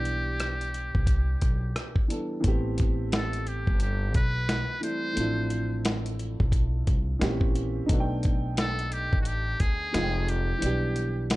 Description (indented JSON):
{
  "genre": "hip hop, jazz-hop",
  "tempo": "88 BPM",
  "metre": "4/4",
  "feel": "swing 62% on 16ths",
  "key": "A minor",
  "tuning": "A4 = 440 Hz",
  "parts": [
    { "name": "trumpet with metal mute", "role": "melody", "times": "0.0-11.3 s", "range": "F#4 to C5", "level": "-32 LUFS", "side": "equal", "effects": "none" },
    { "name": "dark grand piano", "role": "accompaniment", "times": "0.0-11.4 s", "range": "E3 to G5", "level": "-32 LUFS", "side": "right 1 dB", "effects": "none" },
    { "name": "upright bass", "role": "bass", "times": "0.0-11.4 s", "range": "F1 to D2", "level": "-29 LUFS", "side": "equal", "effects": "none" },
    { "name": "dusty soul sampler-style drum kit", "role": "drums", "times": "0.1-11.4 s", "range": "hi-hat, kick drum, rim click, snare drum", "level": "-26 LUFS", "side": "equal", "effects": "none" }
  ],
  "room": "little or no reverb",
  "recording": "dark, warm production",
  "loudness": "-24 LUFS",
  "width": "side -19 dB against mid",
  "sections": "0.0-2.4 A section; 2.4-11.4 B section",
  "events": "none",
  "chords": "0.0 Em7/B; 2.4 Am9; 5.2 Dm7/A; 7.2 A#dim7; 7.9 B7alt; 9.9 Fm7; 10.6 Em7/B"
}